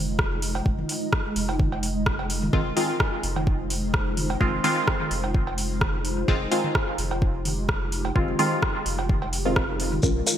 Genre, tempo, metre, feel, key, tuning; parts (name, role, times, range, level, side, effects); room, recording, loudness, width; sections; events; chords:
dub techno; 128 BPM; 4/4; swing 55% on 16ths; F minor; A4 = 440 Hz
granular cloud pad; sustained chords; 0.0-10.4 s; Ab3 to Eb5; -31 LUFS; equal; built-in reverb, analog chorus, sidechain pumping
pure sine sub bass; bass; 0.0-10.2 s; F1 to Bb1; -30 LUFS; equal; sidechain pumping
deep house drum kit; drums; 0.2-10.4 s; hi-hat, rim click; -29 LUFS; equal; gated reverb, dub echo
electronic kick drum; drums; 0.2-10.1 s; -24 LUFS; equal
electronic cowbell and toms; percussion; 0.6-10.1 s; -34 LUFS; right 2 dB; sidechain pumping on toms, sidechain pumping on perc, gated reverb, dub echo
filtered dub chord stab; stabs; 2.5-10.3 s; Eb3 to Bb4; -26 LUFS; equal; chorus, phaser, sidechain pumping, dub echo
shekere; percussion; 10.0-10.4 s; -24 LUFS; left 2 dB
moderate lush hall reverb, RT60 1.6 s, digital ambience; bright 1980s-style digital production; -22 LUFS; side -10 dB against mid
0.0-10.4 A section
0.0 Fm7